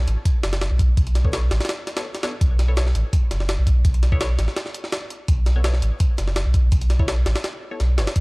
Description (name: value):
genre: drum and bass, jungle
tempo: 167 BPM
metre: 4/4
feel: straight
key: unclear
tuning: A4 = 440 Hz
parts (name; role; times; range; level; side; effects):
- soft dub sub bass; bass; 0.0-8.2 s; F#1 to B1; -19 LUFS; equal; tube saturation
- jungle sampler-style drum kit; drums; 0.1-8.2 s; hi-hat, kick drum, snare drum; -21 LUFS; equal; none
- filtered dub chord stab; stabs; 1.2-8.1 s; B3 to C#5; -35 LUFS; left 2 dB; phaser, cassette tape, dub echo
room: digital ambience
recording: dry, gritty hardware recording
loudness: -18 LUFS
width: side -29 dB against mid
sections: 0.0-8.2 A section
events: none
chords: 0.0 Bm9; 2.4 Aadd9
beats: 0.25 0.61 | 0.97 1.33 1.69 2.05 | 2.41 2.77 3.13 3.49 | 3.85 4.21 4.57 4.92 | 5.28 5.64 6.00 6.36 | 6.72 7.08 7.44 7.80 | 8.16